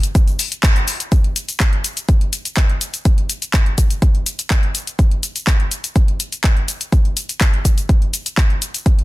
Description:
house; 124 BPM; 4/4; straight
house drum kit; drums; 0.0-9.0 s; handclaps, hi-hat, shaker; -21 LUFS; left 2 dB
electronic kick drum; drums; 0.1-9.0 s; -14 LUFS; equal; overdrive
little or no reverb; dense, heavily limited modern master; -15 LUFS; side -19 dB against mid
0.0-1.1 A section; 1.1-9.0 B section
band accent 0.6

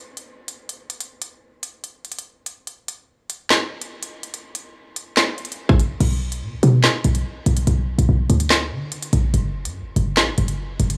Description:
hip hop, drill; 144 BPM; 4/4; half-time; B harmonic minor; A4 = 441 Hz
drill drum kit; drums; 0.2-11.0 s; crash cymbal, handclaps, hi-hat, kick drum, snare drum; -23 LUFS; equal
short 808-style bass; bass; 6.0-11.0 s; F#1 to D3; -21 LUFS; equal
little or no reverb; studio reverb; -20 LUFS; mono
0.0-6.0 A section; 6.0-11.0 B section

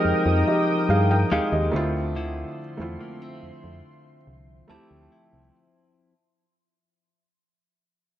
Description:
contemporary R&B; 71 BPM; 4/4; straight; D minor; A4 = 440 Hz
felt-muted upright piano; accompaniment; 0.0-5.6 s; G3 to G5; -26 LUFS; right 2 dB
deep dark ambient pad; sustained chords; 0.0-5.5 s; F3 to Eb6; -30 LUFS; left 2 dB; chorus, built-in reverb
direct-recorded clean electric guitar; arpeggios; 0.0-6.1 s; D3 to C5; -27 LUFS; left 2 dB; lush chorus, tape echo
solid FM bass; bass; 0.0-5.5 s; C2 to G2; -24 LUFS; equal
synth chime; texture; 0.0-5.9 s; A5 to G6; -43 LUFS; right 1 dB
light reverb; cassette tape; -20 LUFS; side -12 dB against mid
0.0-5.5 A section
fade-out 0.0-5.5
0.0 Fm9; 1.7 Dm9

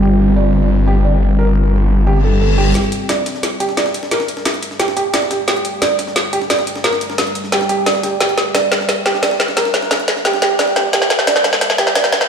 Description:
dark technical drum and bass; 176 BPM; 4/4; straight; A4 = 440 Hz
deep dark ambient pad; sustained chords; 0.0-12.3 s; G3 to Bb4; -23 LUFS; right 1 dB; chorus, built-in reverb, vintage 12-bit sampler grit
felt-muted upright piano; arpeggios; 0.0-12.0 s; G4 to D5; -19 LUFS; right 3 dB; low-pass filter, ping-pong delay
snarling distorted saw bass; bass; 0.0-2.7 s; G1; -13 LUFS; left 1 dB; distortion, overdrive
reverse cymbal; sound effects; 2.2-2.8 s; -26 LUFS; left 4 dB
breakbeat sampler-style drum kit; drums; 2.8-12.3 s; hi-hat, snare drum; -26 LUFS; equal; high-pass filter on hats, high-pass filter on snare
drum and bass drum kit; drums; 2.8-12.3 s; hi-hat, snare drum; -16 LUFS; left 1 dB; high-pass filter on snare, high-pass filter on hats, high-pass filter on room
moderate lush hall reverb, RT60 2.1 s; played on a big sound system in a bare room, stone room reverb, high-pass filter; -13 LUFS; side -7 dB against mid
0.0-2.8 A section; 2.8-12.3 B section
filter sweep on felt piano 0.0-2.8; reverse cymbal 2.2-2.8; build-up 2.8-12.3; drum fill 2.8-12.3; filter sweep on ambient pad 2.8-12.3
0.0 G5

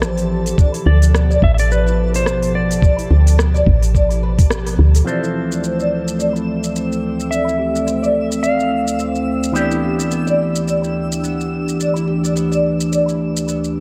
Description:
organic downtempo; 107 BPM; 4/4; swing 57% on 16ths; A4 = 440 Hz
warbly tape-like pad; sustained chords; 0.0-13.8 s; D2 to A4; -23 LUFS; equal; chorus, built-in reverb, sidechain pumping, shimmer reverb
oud; arpeggios; 0.0-13.6 s; E3 to D5; -25 LUFS; equal; low-pass filter, delay, shimmer reverb
woody FM bass; bass; 0.0-5.0 s; A1 to D2; -17 LUFS; equal; sidechain pumping
deep house drum kit; drums; 0.0-13.7 s; hi-hat, rim click, shaker; -28 LUFS; equal
twinkling granular texture; texture; 0.0-13.8 s; A4 to E6; -36 LUFS; equal; built-in reverb, shimmer reverb
electronic kick drum; drums; 0.6-4.5 s; -15 LUFS; equal
clean lap steel guitar; melody; 0.9-9.2 s; B4 to F5; -27 LUFS; equal; delay, shimmer reverb
electric guitar with an envelope filter; accompaniment; 5.0-13.8 s; E3 to A4; -26 LUFS; equal; sidechain pumping, low-pass filter, delay, shimmer reverb
moderate lush hall reverb, RT60 2.1 s; dark, warm production; -17 LUFS; mono
0.0-5.1 A section; 5.1-13.8 B section
band accent 4.5; filter sweep on oud 5.1-13.8
0.0 Dm11 (rootless); 0.6 G7; 5.1 Fmaj7/D; 9.6 Em7/D

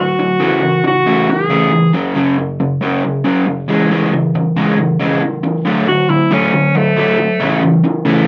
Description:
rock; 137 BPM; 4/4; straight; A4 = 439 Hz
bright alto saxophone; melody; 0.0-2.0, 5.9-7.6 s; A3 to G#4; -17 LUFS; equal; slapback echo
crunchy overdriven guitar; riff; 0.0-8.3 s; F#2 to A3; -15 LUFS; equal
moderate studio reverb, RT60 0.6 s; dark, warm production; -14 LUFS; mono
0.0-5.7 A section; 5.7-8.3 B section
alto saxophone solo 5.7-8.3
0.4 Amaj7/C#; 1.9 F#5; 3.7 C#m; 5.7 Dmaj7; 7.4 A/C#

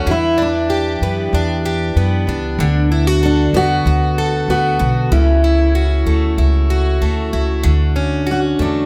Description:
acoustic pop; 95 BPM; 4/4; straight; A4 = 442 Hz
fingerpicked steel-string acoustic guitar; melody; 0.0-8.9 s; D4 to F#4; -21 LUFS; equal
picked plugged-in twelve-string acoustic guitar; accompaniment; 0.0-8.9 s; C#3 to A4; -20 LUFS; equal
upright bass; bass; 0.0-8.9 s; B1 to F#2; -19 LUFS; equal
light reverb; close, detailed microphones; -16 LUFS; mono
0.0-8.9 A section
0.1 Em7; 2.6 Bm7/D; 5.1 F#m7/C#; 7.6 Dmaj7

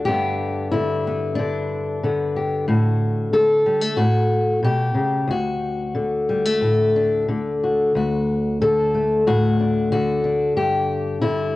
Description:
folk, solo fingerstyle acoustic guitar; 92 BPM; 4/4; straight; D major; A4 = 436 Hz
fingerpicked steel-string acoustic guitar; solo; 0.0-11.6 s; D2 to A4; -18 LUFS; left 1 dB; cassette tape
light reverb; home recording on cassette; -18 LUFS; side -17 dB against mid
0.0-7.9 A section; 7.9-11.6 A section
0.1 G; 2.7 D/A; 4.0 A7; 5.3 D; 10.6 G5

